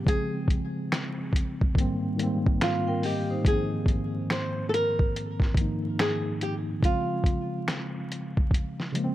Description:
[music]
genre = lo-fi hip hop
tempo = 71 BPM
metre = 4/4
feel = swing 64% on 16ths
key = Ab major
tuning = A4 = 440 Hz
[part]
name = flamenco guitar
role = melody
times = 0.0-9.1 s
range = F4 to C5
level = -30 LUFS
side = equal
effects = low-pass filter, tape echo
[part]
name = mellow tine electric piano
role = accompaniment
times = 0.0-9.1 s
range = Ab2 to Eb4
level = -29 LUFS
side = equal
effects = medium stereo tremolo, cassette tape, low-pass filter
[part]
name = lo-fi sampler-style drum kit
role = drums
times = 0.1-9.1 s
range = finger snaps, hi-hat, kick drum, snare drum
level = -26 LUFS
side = equal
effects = none
[part]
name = vibraphone with medium hard mallets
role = second line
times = 2.9-3.7 s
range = Eb4 to G5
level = -37 LUFS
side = left 3 dB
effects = low-pass filter, tape echo
[sound]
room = light reverb, studio ambience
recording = vinyl crackle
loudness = -25 LUFS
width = side -14 dB against mid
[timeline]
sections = 0.0-3.4 A section; 3.4-9.1 B section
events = none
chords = 0.1 Dbmaj7; 1.8 Abmaj9; 3.4 Ab69; 6.8 Bbm9 (rootless)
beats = | 0.07 0.91 1.76 2.60 | 3.45 4.29 5.14 5.98 | 6.83 7.67 8.52

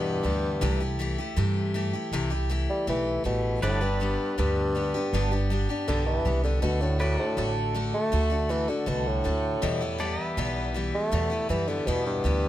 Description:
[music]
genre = honky-tonk and classic country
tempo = 160 BPM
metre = 4/4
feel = straight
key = G major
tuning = A4 = 440 Hz
[part]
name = mellow bassoon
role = melody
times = 0.0-12.5 s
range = G2 to A3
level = -28 LUFS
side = equal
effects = none
[part]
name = picked steel-string acoustic guitar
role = accompaniment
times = 0.0-12.5 s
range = E2 to G4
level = -30 LUFS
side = left 2 dB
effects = none
[part]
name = upright bass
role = bass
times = 0.0-12.5 s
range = G1 to G2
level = -28 LUFS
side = right 1 dB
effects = none
[part]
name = pedal steel guitar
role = sustained chords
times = 3.6-12.5 s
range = A4 to E5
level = -37 LUFS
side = right 1 dB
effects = none
[sound]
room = light reverb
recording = close, detailed microphones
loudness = -24 LUFS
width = side -13 dB against mid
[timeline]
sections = 0.0-12.5 A section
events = bassoon solo 0.0-12.5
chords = 0.0 Em; 0.6 C6; 3.6 G; 6.6 D; 9.6 Em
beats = 0.24 | 0.62 0.99 1.37 1.75 | 2.12 2.50 2.88 3.25 | 3.63 4.00 4.38 4.75 | 5.13 5.50 5.88 6.25 | 6.63 7.00 7.38 7.75 | 8.12 8.50 8.87 9.25 | 9.62 10.00 10.37 10.75 | 11.12 11.49 11.87 12.24

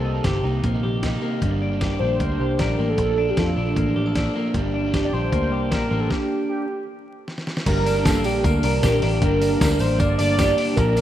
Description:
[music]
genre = jangly indie pop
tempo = 154 BPM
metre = 4/4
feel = straight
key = G minor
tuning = A4 = 438 Hz
[part]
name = warm velvety synth lead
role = melody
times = 0.0-11.0 s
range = F4 to D5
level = -25 LUFS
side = right 1 dB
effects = chorus, phaser
[part]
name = crunchy overdriven guitar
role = accompaniment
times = 0.0-11.0 s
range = G2 to Eb4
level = -31 LUFS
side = right 4 dB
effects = none
[part]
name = twelve-string electric guitar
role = arpeggios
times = 0.0-11.0 s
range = G2 to A4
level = -24 LUFS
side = left 1 dB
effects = none
[part]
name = vintage muted picked electric bass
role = bass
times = 0.0-11.0 s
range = G1 to F2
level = -24 LUFS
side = equal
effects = none
[part]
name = dusty soul sampler-style drum kit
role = drums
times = 0.2-11.0 s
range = crash cymbal, hi-hat, kick drum, snare drum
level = -25 LUFS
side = equal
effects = none
[part]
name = tambourine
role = percussion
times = 7.7-11.0 s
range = none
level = -39 LUFS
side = right 4 dB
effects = none
[sound]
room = moderate lush hall reverb, RT60 2.1 s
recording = rough home demo mix, vinyl crackle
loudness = -19 LUFS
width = side -12 dB against mid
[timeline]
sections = 0.0-7.7 A section; 7.7-11.0 B section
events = stop 6.1-7.7; drum fill 7.3-7.7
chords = 0.0 Cm7; 1.4 Gm; 3.0 Bbmaj7; 4.5 Gm; 6.1 N.C.; 7.7 Gm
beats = 0.25 0.64 1.03 | 1.42 1.81 2.20 2.59 | 2.98 3.37 3.76 4.15 | 4.54 4.93 5.32 5.71 | 6.10 6.49 6.88 7.27 | 7.66 8.05 8.44 8.83 | 9.22 9.61 10.00 10.39 | 10.78

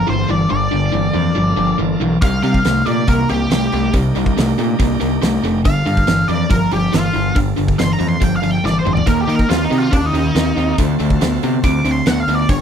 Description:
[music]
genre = blues rock power trio and southern rock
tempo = 140 BPM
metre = 4/4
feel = straight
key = G minor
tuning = A4 = 439 Hz
[part]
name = octave-fuzz lead guitar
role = melody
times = 0.0-12.6 s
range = D4 to D6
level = -20 LUFS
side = left 1 dB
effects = wah, distortion, slapback echo
[part]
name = bright tonewheel organ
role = sustained chords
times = 0.0-12.6 s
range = Bb3 to D5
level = -29 LUFS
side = right 6 dB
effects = overdrive, fast rotary speaker
[part]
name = distorted electric guitar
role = riff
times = 0.0-12.6 s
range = G2 to C#4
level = -17 LUFS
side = left 1 dB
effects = overdrive
[part]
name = growling picked electric bass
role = bass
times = 0.0-12.6 s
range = F1 to Eb3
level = -20 LUFS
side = equal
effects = overdrive
[part]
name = huge arena drum kit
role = drums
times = 2.2-12.6 s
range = hi-hat, kick drum, snare drum, toms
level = -20 LUFS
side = equal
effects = none
[sound]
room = little or no reverb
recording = dry, close 1970s-style studio recording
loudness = -14 LUFS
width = side -8 dB against mid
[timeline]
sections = 0.0-12.6 A section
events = drum fill 8.6-9.1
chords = 0.0 Gm9; 2.2 Cm9; 5.7 Gm9; 9.1 Ebmaj7; 10.8 D7#9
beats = 0.08 | 0.51 0.94 1.37 1.79 | 2.22 2.65 3.08 3.51 | 3.94 4.37 4.79 5.22 | 5.65 6.08 6.51 6.94 | 7.36 7.79 8.22 8.65 | 9.07 9.50 9.93 10.36 | 10.79 11.21 11.64 12.07 | 12.49

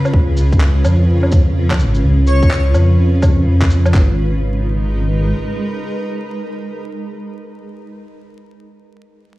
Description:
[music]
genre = future garage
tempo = 126 BPM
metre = 4/4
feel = swing 64% on 16ths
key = G# dorian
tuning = A4 = 436 Hz
[part]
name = granular cloud pad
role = sustained chords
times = 0.0-7.5 s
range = C#3 to B4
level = -22 LUFS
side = equal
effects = built-in reverb, sidechain pumping
[part]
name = dark detuned saw bass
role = bass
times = 0.1-5.3 s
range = G#1 to E#2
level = -13 LUFS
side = equal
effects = sidechain pumping
[part]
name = electronic shaker, woodblock and handclaps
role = drums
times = 0.1-3.9 s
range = none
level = -23 LUFS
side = equal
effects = none
[part]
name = garage drum kit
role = drums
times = 0.1-4.1 s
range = handclaps, kick drum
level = -13 LUFS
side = equal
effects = none
[part]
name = airy dreamy lead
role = melody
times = 2.3-2.5 s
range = C#5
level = -26 LUFS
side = equal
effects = chorus, dub echo
[sound]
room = light reverb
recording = played on a big sound system in a bare room, large studio reverb, vinyl crackle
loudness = -12 LUFS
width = side -18 dB against mid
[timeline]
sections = 0.0-3.9 A section; 3.9-7.8 B section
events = none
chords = 0.0 C#7; 3.9 G#madd9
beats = | 0.13 0.61 1.09 1.56 | 2.04 2.51 2.99 3.47 | 3.94 4.42 4.89 5.37 | 5.85 6.32 6.80 7.28

